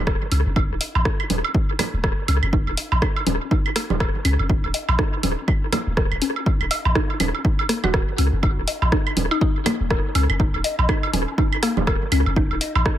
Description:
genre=minimal techno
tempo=122 BPM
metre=4/4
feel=swing 59% on 16ths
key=Eb minor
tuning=A4 = 440 Hz
part: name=punchy sub bass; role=bass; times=0.0-12.8 s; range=Eb1 to Db2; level=-22 LUFS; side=equal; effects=sidechain pumping
part: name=hollow square pluck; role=riff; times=0.1-12.9 s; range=Bb3 to Eb5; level=-28 LUFS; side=left 2 dB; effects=chorus, sidechain pumping, analog delay
part: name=electronic kick drum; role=drums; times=0.1-13.0 s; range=none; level=-21 LUFS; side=equal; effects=none
part: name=punchy analog drum machine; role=drums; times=0.1-13.0 s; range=hi-hat, rim click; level=-26 LUFS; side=equal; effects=tape echo
part: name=woodblock and congas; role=percussion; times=0.1-12.8 s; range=none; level=-26 LUFS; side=right 5 dB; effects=tape echo
part: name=mallet-like synth pluck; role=melody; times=7.8-9.5 s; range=Eb4 to Gb4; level=-29 LUFS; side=left 2 dB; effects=chorus, tape echo
room=light reverb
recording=echo-heavy mix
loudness=-18 LUFS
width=side -11 dB against mid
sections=0.0-13.0 A section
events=filter sweep on synth arpeggio sound 0.0-13.0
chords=0.0 Eb5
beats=0.07 | 0.56 1.05 1.54 2.04 | 2.53 3.02 3.51 4.00 | 4.50 4.99 5.48 5.97 | 6.46 6.96 7.45 7.94 | 8.43 8.92 9.41 9.91 | 10.40 10.89 11.38 11.87 | 12.37 12.86

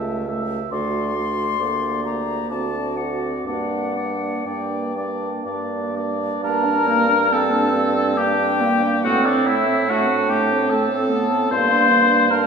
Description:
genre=classical, slow romantic movement for wind quintet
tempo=60-76 BPM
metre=3/4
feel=rubato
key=G minor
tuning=A4 = 439 Hz
part: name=concert flute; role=melody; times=0.0-12.5 s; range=D5 to C6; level=-26 LUFS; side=left 7 dB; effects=none
part: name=mellow oboe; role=second line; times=0.0-12.5 s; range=D4 to E5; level=-22 LUFS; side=left 3 dB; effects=none
part: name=mellow French horn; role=accompaniment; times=0.0-12.5 s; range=A3 to D4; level=-28 LUFS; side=equal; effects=none
part: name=warm clarinet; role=accompaniment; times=0.0-12.5 s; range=Bb3 to G4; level=-24 LUFS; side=right 5 dB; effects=none
part: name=mellow bassoon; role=bass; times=0.0-12.5 s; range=C#2 to A2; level=-25 LUFS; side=right 3 dB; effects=none
room=wet recital hall reverb, RT60 1.6 s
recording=recorded in a church or concert hall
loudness=-18 LUFS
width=side -6 dB against mid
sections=0.0-6.4 A section; 6.4-12.5 B section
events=none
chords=0.0 A7/C#; 0.7 D7; 1.6 Gm/D; 2.5 D7; 3.5 Gm; 9.0 Am13; 11.5 Gm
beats=| 0.72 1.60 2.51 | 3.46 4.46 5.46 | 6.43 7.32 8.17 | 9.04 9.88 10.70 | 11.50 12.31

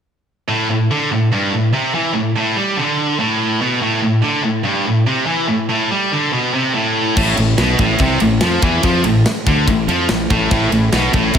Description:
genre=heavy metal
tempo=144 BPM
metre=4/4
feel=straight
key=A minor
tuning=A4 = 441 Hz
part: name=heavy high-gain guitar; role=riff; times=0.5-11.4 s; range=G2 to G3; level=-18 LUFS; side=right 7 dB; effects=distortion, slapback echo
part: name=scooped high-gain guitar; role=riff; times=0.5-11.4 s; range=G2 to G3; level=-18 LUFS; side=left 6 dB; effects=distortion
part: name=distorted electric guitar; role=riff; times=7.2-11.4 s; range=A2 to F3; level=-20 LUFS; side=left 2 dB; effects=distortion
part: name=fuzz fingered electric bass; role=bass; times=7.2-11.4 s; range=A1 to F2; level=-19 LUFS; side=equal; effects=overdrive
part: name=tight metal drum kit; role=drums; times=7.2-11.4 s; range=crash cymbal, kick drum, ride cymbal, snare drum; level=-18 LUFS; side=equal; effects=none
room=moderate lush hall reverb, RT60 1.7 s, studio ambience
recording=big arena sound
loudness=-14 LUFS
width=side -8 dB against mid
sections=0.5-7.2 A section; 7.2-11.4 B section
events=none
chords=0.5 Am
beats=| 0.48 0.90 1.31 1.73 | 2.15 2.57 2.99 3.40 | 3.82 4.24 4.66 5.08 | 5.50 5.91 6.33 6.75 | 7.17 7.59 8.00 8.42 | 8.84 9.26 9.68 10.09 | 10.51 10.93 11.35

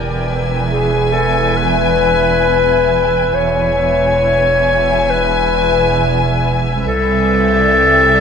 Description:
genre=cinematic, suspense film score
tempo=free time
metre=none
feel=none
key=unclear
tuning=A4 = 444 Hz
part: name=rich chamber violin section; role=melody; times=0.0-8.2 s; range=E5 to G#5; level=-20 LUFS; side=left 5 dB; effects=none
part: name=soft additive organ-like pad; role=sustained chords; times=0.0-8.2 s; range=B4 to G#5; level=-21 LUFS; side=equal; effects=ensemble chorus, built-in reverb
part: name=dark symphonic double bass section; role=bass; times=0.0-8.2 s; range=E1 to C2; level=-23 LUFS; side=right 6 dB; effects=none
part: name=warm symphonic cello section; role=bass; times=0.0-8.2 s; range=C2 to E2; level=-21 LUFS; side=right 4 dB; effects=none
part: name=saturated sub bass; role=drone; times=0.0-8.2 s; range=E1 to C2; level=-23 LUFS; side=equal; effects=none
part: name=warm clarinet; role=second line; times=0.7-8.2 s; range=G#4 to C#5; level=-14 LUFS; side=left 3 dB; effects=none
room=moderate concert hall reverb, RT60 2.4 s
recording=none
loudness=-11 LUFS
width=side -6 dB against mid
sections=0.0-8.2 A section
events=none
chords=0.0 E; 6.9 Cadd9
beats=free time

